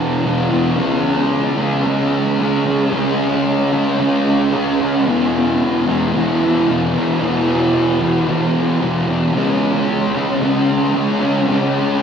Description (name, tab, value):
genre	rock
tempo	112 BPM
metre	4/4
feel	straight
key	unclear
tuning	A4 = 445 Hz
part	thick fuzz guitar	solo	0.0-12.0 s	E2 to C#4	-14 LUFS	equal	distortion, lush chorus, analog delay
room	wet huge ambient reverb, RT60 7.8 s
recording	dreamy mix soaked in reverb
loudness	-14 LUFS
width	side -7 dB against mid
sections	0.0-12.0 A section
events	none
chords	0.0 E5; 0.8 C#5; 5.1 E5; 9.4 C#5